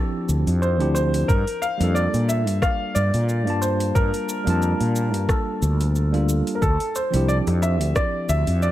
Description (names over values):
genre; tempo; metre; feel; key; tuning
sunset chillout; 90 BPM; 4/4; swing 55% on 16ths; unclear; A4 = 440 Hz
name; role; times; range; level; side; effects
dark baby grand piano; melody; 0.0-8.7 s; A4 to F5; -26 LUFS; equal; tape echo
tine electric piano; accompaniment; 0.0-8.7 s; F3 to A5; -26 LUFS; equal; auto-pan
fretless electric bass; bass; 0.3-8.7 s; C2 to Bb2; -21 LUFS; equal; none
smooth R&B drum kit; drums; 0.3-8.7 s; cabasa, hi-hat, rim click; -32 LUFS; equal; studio reverb
electronic kick drum; drums; 1.3-8.1 s; none; -22 LUFS; equal; studio reverb
bongos; percussion; 7.5-7.8 s; none; -35 LUFS; left 1 dB; none
room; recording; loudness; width
little or no reverb; none; -19 LUFS; side -14 dB against mid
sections
0.0-8.7 A section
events
none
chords
0.0 Dm11; 1.3 Gm9; 6.6 Dm11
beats
0.62 | 1.29 1.96 2.62 3.29 | 3.96 4.62 5.29 5.96 | 6.62 7.29 7.96 8.62